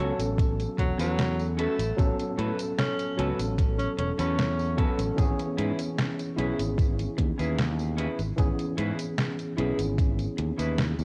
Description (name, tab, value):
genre	vaporwave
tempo	75 BPM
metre	4/4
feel	straight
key	A lydian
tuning	A4 = 440 Hz
part	tine electric piano	accompaniment	0.0-11.0 s	E3 to A4	-34 LUFS	equal	overdrive, analog chorus, vintage 12-bit sampler grit, cassette tape, tape echo
part	clean electric guitar	riff	0.0-10.8 s	C#4 to C#5	-39 LUFS	equal	subtle chorus, cassette tape, tape echo
part	fretless electric bass	bass	0.0-11.0 s	E1 to A2	-32 LUFS	equal	none
part	detuned 8-bit digital drum machine	drums	0.2-11.0 s	hi-hat, snare drum, tambourine	-34 LUFS	equal	overdrive, cassette tape
part	electronic kick drum	drums	0.4-10.1 s	none	-28 LUFS	equal	overdrive, cassette tape
part	breathy tenor saxophone	melody	0.8-4.8 s	F#3 to C#4	-35 LUFS	equal	cassette tape, tape echo
room	digital ambience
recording	home recording on cassette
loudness	-27 LUFS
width	mono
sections	0.0-11.0 A section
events	none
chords	0.0 A69; 5.2 E6/G#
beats	0.38 1.18 | 1.98 2.78 3.58 4.38 | 5.18 5.98 6.78 7.58 | 8.38 9.18 9.98 10.78